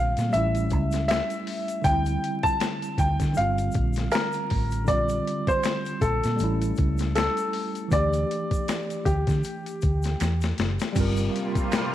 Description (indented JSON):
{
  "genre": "R&B, neo-soul",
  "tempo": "79 BPM",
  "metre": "4/4",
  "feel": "swing 57% on 16ths",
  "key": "G dorian",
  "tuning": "A4 = 442 Hz",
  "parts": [
    { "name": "warm baby grand piano", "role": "melody", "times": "0.0-10.5 s", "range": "G4 to A5", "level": "-27 LUFS", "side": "equal", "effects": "slapback echo" },
    { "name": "tine electric piano", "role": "accompaniment", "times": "0.0-11.9 s", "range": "D3 to Bb4", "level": "-30 LUFS", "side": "right 1 dB", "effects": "overdrive, fast stereo tremolo" },
    { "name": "vintage muted fingered electric bass", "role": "bass", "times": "0.0-11.3 s", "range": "F#1 to D3", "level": "-25 LUFS", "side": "equal", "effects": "tube saturation" },
    { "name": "boom bap sampler-style drum kit", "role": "drums", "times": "0.2-11.9 s", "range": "crash cymbal, hi-hat, kick drum, snare drum", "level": "-28 LUFS", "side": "left 2 dB", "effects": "none" },
    { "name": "egg shaker and finger snaps", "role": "percussion", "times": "0.2-11.9 s", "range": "none", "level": "-41 LUFS", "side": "right 6 dB", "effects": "none" },
    { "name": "lush unison pad", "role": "sustained chords", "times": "11.0-11.9 s", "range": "C3 to F4", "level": "-31 LUFS", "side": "equal", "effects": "chorus, phaser" }
  ],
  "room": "light reverb, digital ambience",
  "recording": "1960s-style stereo, vinyl crackle",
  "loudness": "-22 LUFS",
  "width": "side -12 dB against mid",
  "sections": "0.0-11.0 A section",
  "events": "drum fill 10.2-11.0",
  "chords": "0.3 A7; 1.8 D9sus4; 3.4 Gm9; 4.9 Bbadd9; 6.4 A7; 7.9 Dsus24; 11.0 Gm7"
}